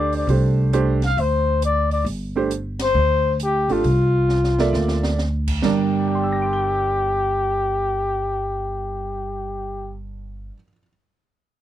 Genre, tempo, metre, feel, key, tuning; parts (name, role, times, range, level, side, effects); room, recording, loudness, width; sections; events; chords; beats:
modal jazz; 135 BPM; 4/4; swing 65% on 8ths; G dorian; A4 = 440 Hz
breathy trumpet; melody; 0.0-10.0 s; F4 to F5; -21 LUFS; left 2 dB
clear concert grand piano; accompaniment; 0.0-10.9 s; G2 to G7; -24 LUFS; right 6 dB
upright bass; bass; 0.0-10.5 s; G1 to D2; -23 LUFS; equal
open jazz drum kit; drums; 0.1-5.8 s; crash cymbal, hi-hat, kick drum, ride cymbal, snare drum; -31 LUFS; right 1 dB
little or no reverb; dry, close 1970s-style studio recording; -18 LUFS; side -12 dB against mid
0.0-5.6 A section; 5.6-9.2 B section
band accent 2.7; drum fill 4.3-5.2
0.0 G9sus4; 5.6 Gm
| 0.27 0.72 1.17 1.61 | 2.06 2.50 2.95 3.40 | 3.84 4.29 4.73 5.18 | 5.62 6.07 6.51 6.96 | 7.40 7.85 8.29 8.73